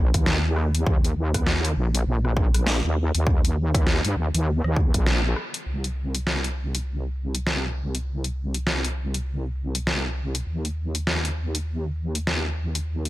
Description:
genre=glitch hop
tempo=100 BPM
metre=4/4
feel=swing 60% on 16ths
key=unclear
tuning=A4 = 441 Hz
part: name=wobble bass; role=bass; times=0.0-13.1 s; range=Bb1 to G2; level=-24 LUFS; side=equal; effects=chorus
part: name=dubstep drum kit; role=drums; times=0.1-13.1 s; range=hi-hat, rim click, snare drum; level=-26 LUFS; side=equal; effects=none
part: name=electronic kick drum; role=drums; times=0.1-5.0 s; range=none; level=-22 LUFS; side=equal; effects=none
room=little or no reverb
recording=none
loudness=-22 LUFS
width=side -16 dB against mid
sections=0.0-5.7 A section; 5.7-13.1 B section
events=break 5.1-5.7; band accent 5.1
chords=none

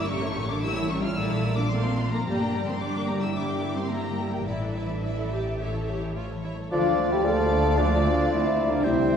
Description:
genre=classical, dramatic, fast romantic movement for symphony orchestra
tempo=110 BPM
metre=4/4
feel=uneven beats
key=D minor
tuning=A4 = 438 Hz
part: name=dark symphonic violin section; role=melody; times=0.0-9.2 s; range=E5 to F6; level=-35 LUFS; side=left 3 dB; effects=none
part: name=clear symphonic violin section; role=second line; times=0.0-9.2 s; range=G4 to G5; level=-36 LUFS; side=left 1 dB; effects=none
part: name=clear symphonic viola section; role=accompaniment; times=0.0-9.2 s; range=G3 to A4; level=-34 LUFS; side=right 2 dB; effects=none
part: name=concert harp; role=arpeggios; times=0.0-9.2 s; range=G2 to F4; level=-32 LUFS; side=left 3 dB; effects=none
part: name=clear symphonic double bass section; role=bass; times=0.0-9.2 s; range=G1 to D2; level=-30 LUFS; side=right 2 dB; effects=none
part: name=rich symphonic cello section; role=bass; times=0.0-9.2 s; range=C2 to F4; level=-33 LUFS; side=right 1 dB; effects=none
part: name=bright clarinet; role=second line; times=6.7-9.2 s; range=C5 to D5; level=-31 LUFS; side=left 1 dB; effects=none
part: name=mellow cor anglais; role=second line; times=6.7-9.2 s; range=Bb3 to F4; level=-32 LUFS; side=right 2 dB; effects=none
part: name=mellow hollow large flute ensemble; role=second line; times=6.7-9.2 s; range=D5 to A5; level=-30 LUFS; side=left 1 dB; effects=none
part: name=warm bassoon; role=accompaniment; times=6.7-9.2 s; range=F3 to G3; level=-30 LUFS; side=right 3 dB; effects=none
part: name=clear trombone section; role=sustained chords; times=6.7-9.0 s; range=C3 to G3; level=-35 LUFS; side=equal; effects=none
part: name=mellow French horn section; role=sustained chords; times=6.7-9.2 s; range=D4 to A4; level=-24 LUFS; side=left 2 dB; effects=none
room=wet scoring stage reverb, RT60 1.6 s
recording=heard from further back in the room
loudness=-23 LUFS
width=side -7 dB against mid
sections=0.0-6.7 A section; 6.7-9.2 B section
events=none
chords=0.1 A7b9; 1.2 Bbmaj7; 2.3 Gm; 4.5 Asus4; 5.6 A; 6.7 Dm

